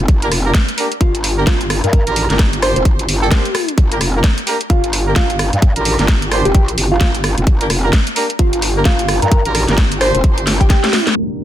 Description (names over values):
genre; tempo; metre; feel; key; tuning
bass house; 130 BPM; 4/4; swing 60% on 16ths; G minor; A4 = 440 Hz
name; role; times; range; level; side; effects
metallic wobble bass; bass; 0.0-10.7 s; F1 to G2; -18 LUFS; equal; chorus, tube saturation, sidechain pumping
electronic kick drum; drums; 0.1-10.8 s; none; -12 LUFS; equal; overdrive
garage drum kit; drums; 0.1-11.4 s; hi-hat, rim click, shaker, snare drum; -18 LUFS; equal; none
warm horn section; stabs; 0.2-11.4 s; Bb3 to C5; -21 LUFS; right 2 dB; sidechain pumping, low-pass filter, digital delay
soft struck synth lead; melody; 1.0-11.1 s; F4 to C5; -20 LUFS; equal; chorus, digital delay
downlifter; sound effects; 11.2-11.4 s; none; -26 LUFS; left 1 dB; none
room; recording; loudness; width
light reverb; dense, heavily limited modern master, low-pass filter; -12 LUFS; side -12 dB against mid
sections
0.0-11.2 A section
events
drum fill 10.5-11.2; band accent 11.0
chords
0.0 Gm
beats
| 0.08 0.55 1.01 1.47 | 1.93 2.39 2.85 3.31 | 3.78 4.24 4.70 5.16 | 5.62 6.08 6.55 7.01 | 7.47 7.93 8.39 8.85 | 9.31 9.78 10.24 10.70 | 11.16